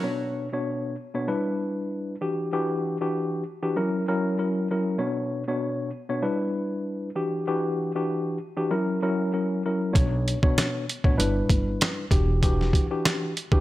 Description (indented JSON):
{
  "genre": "hip hop, boom-bap hip-hop",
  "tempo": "97 BPM",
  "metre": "4/4",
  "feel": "swing 54% on 16ths",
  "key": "B harmonic minor",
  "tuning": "A4 = 440 Hz",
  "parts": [
    { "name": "mellow tine electric piano", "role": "accompaniment", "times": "0.0-13.6 s", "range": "B2 to C#5", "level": "-26 LUFS", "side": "left 1 dB", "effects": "medium stereo tremolo, cassette tape, high-pass filter, low-pass filter" },
    { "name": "upright bass", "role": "bass", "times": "10.0-13.6 s", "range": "E1 to B1", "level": "-26 LUFS", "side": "equal", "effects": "none" },
    { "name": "trip hop sampler-style drum kit", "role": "drums", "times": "10.0-13.6 s", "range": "hi-hat, kick drum, snare drum", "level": "-22 LUFS", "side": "equal", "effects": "none" }
  ],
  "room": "light reverb, small room ambience",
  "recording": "none",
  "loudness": "-24 LUFS",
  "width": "side -16 dB against mid",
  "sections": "0.1-10.0 A section; 10.0-13.6 B section",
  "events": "none",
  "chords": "0.1 Bmadd9; 1.3 G6; 2.2 Em9; 3.8 F#7; 5.0 Bmadd9; 6.2 G6; 7.2 Em9; 8.7 F#7; 10.0 Bmadd9; 11.2 G6; 12.1 Em9",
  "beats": "| 0.06 0.67 1.29 1.91 | 2.53 3.15 3.77 4.38 | 5.00 5.62 6.24 6.86 | 7.48 8.10 8.71 9.33 | 9.95 10.57 11.19 11.81 | 12.43 13.04"
}